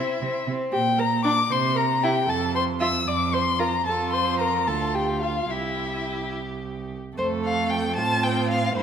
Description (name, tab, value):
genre	quick classical-period movement for string quartet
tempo	75 BPM (dotted quarters)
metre	6/8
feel	straight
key	F major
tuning	A4 = 440 Hz
part	warm violin	melody	0.0-8.8 s	E4 to E6	-25 LUFS	left 5 dB	none
part	rich violin	second line	0.0-8.8 s	C4 to A5	-28 LUFS	left 1 dB	none
part	warm viola	accompaniment	0.0-8.8 s	A3 to E5	-30 LUFS	right 4 dB	none
part	warm cello	bass	0.0-8.8 s	C2 to C3	-28 LUFS	right 5 dB	none
room	moderate scoring stage reverb, RT60 1.9 s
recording	none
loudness	-21 LUFS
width	side -8 dB against mid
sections	0.0-7.2 A section; 7.2-8.8 B section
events	none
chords	0.0 C; 0.7 Bb6; 1.5 C5; 2.3 F; 4.7 Dm; 5.5 C; 7.2 F